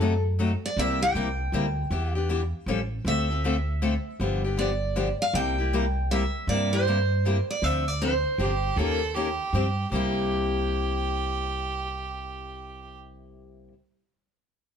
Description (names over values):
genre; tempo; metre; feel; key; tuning
acoustic string swing (jazz manouche); 157 BPM; 3/4; swing 63% on 8ths; C mixolydian; A4 = 439 Hz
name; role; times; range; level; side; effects
picked steel-string acoustic guitar; melody; 0.0-9.5 s; A4 to G5; -28 LUFS; right 1 dB; none
picked steel-string acoustic guitar; accompaniment; 0.0-13.7 s; C3 to Bb4; -29 LUFS; left 4 dB; none
upright bass; bass; 0.0-13.7 s; G1 to G2; -28 LUFS; right 1 dB; none
clear violin; second line; 8.4-13.0 s; G4 to A4; -31 LUFS; right 5 dB; none
room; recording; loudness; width
light reverb; none; -24 LUFS; side -7 dB against mid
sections
0.0-7.6 A section; 7.6-9.9 B section; 9.9-12.2 C section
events
none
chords
0.0 F#dim7; 0.8 C7; 1.9 Em7; 2.7 Aaug7; 3.0 Dm7; 4.2 G7; 5.3 C7; 7.6 Dm7; 8.4 G7sus4; 8.8 Eb7; 9.5 G7sus4; 9.9 C7